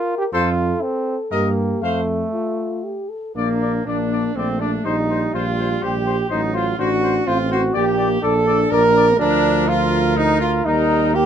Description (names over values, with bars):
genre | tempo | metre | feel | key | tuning
classical, brass quintet | 123 BPM | 3/4 | rubato | Bb major | A4 = 440 Hz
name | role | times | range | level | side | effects
mellow French horn | accompaniment | 0.0-11.3 s | F3 to Bb4 | -25 LUFS | left 5 dB | none
mellow trombone | accompaniment | 0.0-11.3 s | A3 to Bb4 | -20 LUFS | right 2 dB | none
mellow trumpet | melody | 0.3-11.3 s | Bb4 to F5 | -24 LUFS | left 8 dB | none
bright trumpet | second line | 0.3-11.3 s | Bb3 to C5 | -26 LUFS | right 3 dB | none
mellow tuba | bass | 0.3-11.3 s | A1 to G2 | -22 LUFS | right 3 dB | none
room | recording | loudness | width
light reverb | minimal, uncompressed stereo recording | -16 LUFS | side -8 dB against mid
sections
0.0-3.4 A section; 3.4-11.3 B section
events
none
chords
0.3 F; 1.3 Eb/G; 1.8 F; 3.4 Bb; 4.8 Cm7/Bb; 6.3 F13b9/A; 7.8 Bb; 9.2 Bb/D; 10.7 Eb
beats
| 0.33 0.82 1.32 | 1.82 2.34 2.85 | 3.36 3.86 4.36 | 4.85 5.34 5.83 | 6.31 6.79 7.28 | 7.75 8.23 8.71 | 9.19 9.68 10.17 | 10.66 11.15